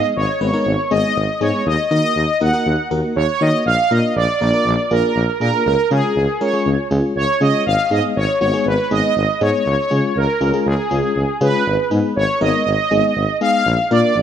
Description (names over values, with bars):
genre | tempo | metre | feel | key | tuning
synth-pop | 120 BPM | 4/4 | straight | unclear | A4 = 440 Hz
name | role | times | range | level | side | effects
analog synth brass | melody | 0.0-14.2 s | Ab4 to Gb5 | -18 LUFS | right 1 dB | chorus, analog delay
FM electric piano with auto-pan | accompaniment | 0.0-14.1 s | Ab3 to Db5 | -22 LUFS | left 3 dB | none
warm tuba | bass | 0.2-14.2 s | Ab1 to Eb3 | -19 LUFS | equal | none
room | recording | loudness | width
moderate echo chamber reverb, RT60 2.6 s | echo-heavy mix | -15 LUFS | side -9 dB against mid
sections
0.0-11.7 A section; 11.7-14.2 B section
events
none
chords
0.0 Abm; 1.7 Ebm; 3.7 Bb; 5.7 Db; 7.7 Abm; 9.7 Db; 11.7 Abm; 13.7 Bb